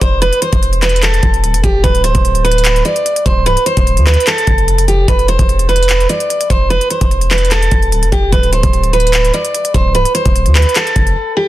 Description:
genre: hip hop, trap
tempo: 148 BPM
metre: 4/4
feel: half-time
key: E phrygian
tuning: A4 = 445 Hz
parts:
  - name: picked steel-string acoustic guitar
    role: melody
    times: 0.0-11.5 s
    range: G4 to D5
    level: -14 LUFS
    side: right 1 dB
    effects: low-pass filter, digital delay
  - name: long sustained 808-style bass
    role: bass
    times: 0.0-11.2 s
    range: C1 to D2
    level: -14 LUFS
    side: equal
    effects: none
  - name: trap drum kit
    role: drums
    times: 0.0-11.2 s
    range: handclaps, hi-hat, kick drum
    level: -15 LUFS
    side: equal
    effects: none
room: digital ambience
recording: dense, heavily limited modern master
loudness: -10 LUFS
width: side -15 dB against mid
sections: 0.0-11.5 A section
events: break 11.2-11.5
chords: 0.0 E5; 1.8 Dm; 5.1 E5; 8.3 N.C.

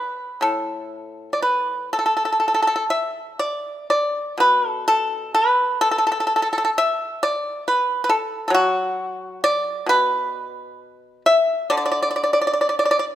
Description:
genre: chinese traditional, Chinese solo plucked strings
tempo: 60-67 BPM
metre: 4/4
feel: rubato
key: D gong mode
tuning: A4 = 440 Hz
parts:
  - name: pipa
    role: solo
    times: 0.0-13.2 s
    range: A2 to E5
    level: -18 LUFS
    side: equal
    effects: none
room: light reverb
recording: minimal, uncompressed stereo recording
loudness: -18 LUFS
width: side -12 dB against mid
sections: 0.0-13.2 A section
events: none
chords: none

